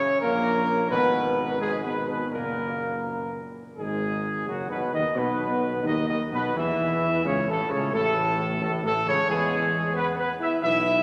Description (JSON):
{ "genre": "classical", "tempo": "87 BPM", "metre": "4/4", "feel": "straight", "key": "B mixolydian from 3.8 s", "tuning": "A4 = 440 Hz", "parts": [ { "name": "mellow trumpet section", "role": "melody", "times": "0.0-11.0 s", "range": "F#4 to E5", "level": "-28 LUFS", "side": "equal", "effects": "none" }, { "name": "clear trombone section", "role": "sustained chords", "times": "0.0-10.9 s", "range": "F#2 to B3", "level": "-35 LUFS", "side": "equal", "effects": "none" }, { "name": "dark French horn section", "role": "sustained chords", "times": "0.0-11.0 s", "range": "F#3 to E4", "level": "-33 LUFS", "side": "equal", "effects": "none" }, { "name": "dark tuba", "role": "bass", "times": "0.2-11.0 s", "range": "F#1 to E2", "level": "-33 LUFS", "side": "equal", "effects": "none" } ], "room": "wet church reverb, RT60 3.4 s", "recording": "none", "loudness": "-25 LUFS", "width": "mono", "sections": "0.0-3.8 A section; 3.8-11.0 B section", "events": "none", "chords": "0.0 F# (rootless); 0.9 G#m; 2.3 F#; 3.8 B; 6.6 A; 9.3 E" }